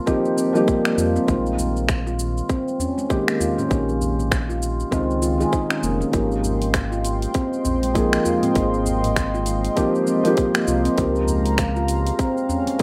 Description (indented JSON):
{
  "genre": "organic downtempo",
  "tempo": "99 BPM",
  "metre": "4/4",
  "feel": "swing 59% on 16ths",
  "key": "Bb dorian",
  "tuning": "A4 = 440 Hz",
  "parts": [
    { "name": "felt-muted upright piano", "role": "accompaniment", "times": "0.0-12.8 s", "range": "Eb3 to Bb4", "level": "-27 LUFS", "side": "equal", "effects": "sidechain pumping, digital delay" },
    { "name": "handpan", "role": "arpeggios", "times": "0.0-12.8 s", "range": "G3 to Ab4", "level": "-26 LUFS", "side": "equal", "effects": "digital delay" },
    { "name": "afro-pop drum kit", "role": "drums", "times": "0.1-12.8 s", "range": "finger snaps, hi-hat, shaker, toms", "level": "-30 LUFS", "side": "equal", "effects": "small room reverb" },
    { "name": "electronic kick drum", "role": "drums", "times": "0.1-12.8 s", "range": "none", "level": "-27 LUFS", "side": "equal", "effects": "overdrive, small room reverb" },
    { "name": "round analog bass", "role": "bass", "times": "1.0-12.1 s", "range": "F1 to F2", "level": "-27 LUFS", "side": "equal", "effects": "sidechain pumping" },
    { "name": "udu", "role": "percussion", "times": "1.6-12.6 s", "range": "none", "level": "-34 LUFS", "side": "equal", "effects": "none" },
    { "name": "warm analog pad", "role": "sustained chords", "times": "6.1-12.8 s", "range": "Ab3 to C6", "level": "-30 LUFS", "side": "equal", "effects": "chorus, sidechain pumping" }
  ],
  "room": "light reverb, digital ambience",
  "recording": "rough home demo mix",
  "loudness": "-21 LUFS",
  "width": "mono",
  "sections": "0.0-12.8 A section",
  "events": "none",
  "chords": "0.0 Cm7; 1.3 Bbm; 6.1 Abmaj7; 11.0 Db6"
}